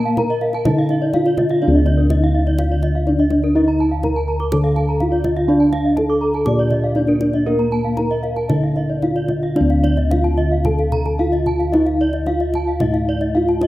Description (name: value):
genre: Balinese gamelan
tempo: 111-124 BPM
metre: 4/4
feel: straight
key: D pelog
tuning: A4 = 438 Hz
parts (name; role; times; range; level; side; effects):
- gamelan-type bronze metallophone; melody; 0.0-13.7 s; Bb3 to D5; -19 LUFS; equal; none
- gamelan-type bronze metallophone; arpeggios; 0.0-13.7 s; Bb4 to D6; -28 LUFS; right 4 dB; none
- gamelan-type bossed gongs; bass; 0.0-13.7 s; D2 to Bb4; -18 LUFS; equal; none
- gamelan-type bronze metallophone; arpeggios; 0.1-13.6 s; Bb4 to D6; -27 LUFS; left 4 dB; none
- kendang; percussion; 0.2-13.7 s; none; -26 LUFS; right 1 dB; none
room: light reverb, small room ambience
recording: rough home demo mix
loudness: -15 LUFS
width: side -16 dB against mid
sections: 0.0-1.6 A section; 1.6-9.6 A section; 9.6-13.7 B section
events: none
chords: none